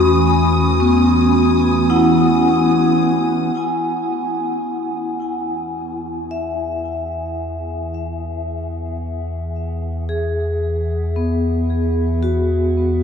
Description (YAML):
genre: ambient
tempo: 55 BPM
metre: 4/4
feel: straight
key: E major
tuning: A4 = 440 Hz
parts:
  - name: warbly tape-like pad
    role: sustained chords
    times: 0.0-13.0 s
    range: E3 to G#5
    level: -21 LUFS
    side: equal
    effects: chorus, built-in reverb, phaser
  - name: vibraphone with medium hard mallets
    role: arpeggios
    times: 0.0-13.0 s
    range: B3 to B5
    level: -19 LUFS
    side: left 1 dB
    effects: ping-pong delay
  - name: round analog bass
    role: bass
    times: 0.0-13.0 s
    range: E2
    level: -22 LUFS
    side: equal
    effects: none
  - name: warm symphonic violin section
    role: texture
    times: 0.0-3.6 s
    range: D#6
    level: -26 LUFS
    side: equal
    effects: none
room: wet huge ambient reverb, RT60 8.2 s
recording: dark, warm production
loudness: -16 LUFS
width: side -7 dB against mid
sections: 0.0-3.6 A section; 3.6-13.0 B section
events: fade-in on ambient pad 3.6-13.0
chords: 0.0 F#madd9/E; 3.6 Eadd9